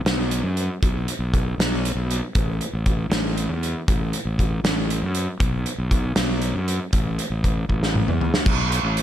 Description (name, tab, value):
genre	math rock and midwest emo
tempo	79 BPM (dotted quarters)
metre	6/8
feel	straight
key	unclear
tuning	A4 = 440 Hz
part	fuzz fingered electric bass	bass	0.0-9.0 s	A1 to F#2	-24 LUFS	equal	overdrive
part	loose indie drum kit	drums	0.1-9.0 s	crash cymbal, hi-hat, kick drum, snare drum, toms	-22 LUFS	equal	none
room	light reverb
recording	none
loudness	-20 LUFS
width	side -11 dB against mid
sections	0.0-8.5 A section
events	drum fill 7.7-8.5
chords	none